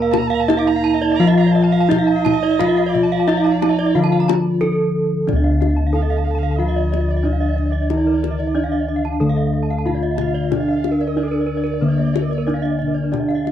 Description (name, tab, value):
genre	Balinese gamelan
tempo	91 BPM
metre	4/4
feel	uneven beats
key	D pelog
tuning	A4 = 440 Hz
part	gamelan-type bronze metallophone	melody	0.0-13.5 s	Bb3 to Bb4	-20 LUFS	right 1 dB	slapback echo
part	gamelan-type bronze metallophone	accompaniment	0.0-13.5 s	D3 to Bb3	-24 LUFS	equal	none
part	gamelan-type bronze metallophone	arpeggios	0.0-13.5 s	Bb4 to Bb5	-28 LUFS	left 6 dB	none
part	gamelan-type bronze metallophone	arpeggios	0.0-13.4 s	A4 to Bb5	-26 LUFS	right 8 dB	none
part	gamelan-type bossed gongs	bass	0.0-13.5 s	D2 to Bb4	-20 LUFS	left 1 dB	none
part	dark erhu	second line	0.1-13.1 s	D5 to D6	-30 LUFS	right 14 dB	none
part	kendang	percussion	0.1-13.5 s	none	-25 LUFS	left 14 dB	none
room	light reverb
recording	dry, close 1970s-style studio recording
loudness	-15 LUFS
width	side -10 dB against mid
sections	0.0-5.3 A section; 5.3-13.5 B section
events	break 4.3-5.3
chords	none